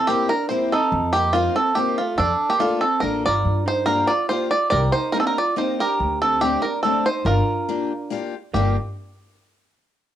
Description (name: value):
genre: musette waltz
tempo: 142 BPM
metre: 3/4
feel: swing 53% on 8ths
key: G minor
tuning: A4 = 440 Hz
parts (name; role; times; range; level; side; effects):
- bluegrass banjo; melody; 0.0-8.8 s; D4 to D5; -20 LUFS; right 1 dB; cassette tape, plate reverb
- vintage hollow-body jazz guitar; second line; 0.0-8.7 s; A3 to G4; -28 LUFS; right 7 dB; cassette tape, plate reverb
- picked steel-string acoustic guitar; accompaniment; 0.1-8.8 s; A3 to A4; -26 LUFS; left 9 dB; cassette tape, plate reverb
- upright bass; bass; 0.9-8.8 s; G1 to G2; -24 LUFS; left 1 dB; none
room: moderate studio reverb, RT60 0.6 s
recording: home recording on cassette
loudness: -18 LUFS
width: side -11 dB against mid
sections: 0.0-8.5 A section; 8.5-9.8 B section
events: none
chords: 0.0 C7; 0.9 F7sus4; 2.2 Bbmaj7/F; 3.5 Gm7; 4.7 Cm7; 6.0 D7sus4; 7.3 Gm7